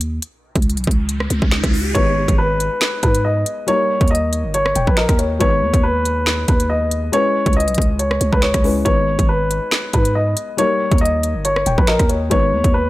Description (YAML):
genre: hip hop, drill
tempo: 139 BPM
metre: 4/4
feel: half-time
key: G# harmonic minor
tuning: A4 = 440 Hz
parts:
  - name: growling 808-style bass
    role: bass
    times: 0.0-12.9 s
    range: D#1 to G#2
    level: -20 LUFS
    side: equal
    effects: none
  - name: drill drum kit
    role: drums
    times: 0.0-12.7 s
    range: finger snaps, hi-hat, kick drum, rim click, snare drum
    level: -18 LUFS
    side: equal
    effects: none
  - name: riser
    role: sound effects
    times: 0.8-2.0 s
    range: none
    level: -28 LUFS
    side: equal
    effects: none
  - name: dark baby grand piano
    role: melody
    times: 1.9-12.9 s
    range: A#4 to D#5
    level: -19 LUFS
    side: equal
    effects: low-pass filter, tape echo
  - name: felt-muted upright piano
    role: accompaniment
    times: 1.9-12.9 s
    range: G3 to G5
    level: -24 LUFS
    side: left 5 dB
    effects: low-pass filter
room: digital ambience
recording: faint mains hum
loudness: -14 LUFS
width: side -17 dB against mid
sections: 0.0-2.0 A section; 2.0-12.9 B section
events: break 0.0-2.0; riser 0.8-2.0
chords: 0.2 N.C.; 2.0 G#m; 3.7 D#; 5.4 G#m; 7.1 C#m7; 8.9 G#m; 10.6 D#; 12.3 G#m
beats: | 0.23 0.66 1.09 1.52 | 1.95 2.38 2.81 3.25 | 3.68 4.11 4.54 4.97 | 5.41 5.84 6.27 6.70 | 7.13 7.56 8.00 8.43 | 8.86 9.29 9.72 10.15 | 10.59 11.02 11.45 11.88 | 12.31 12.74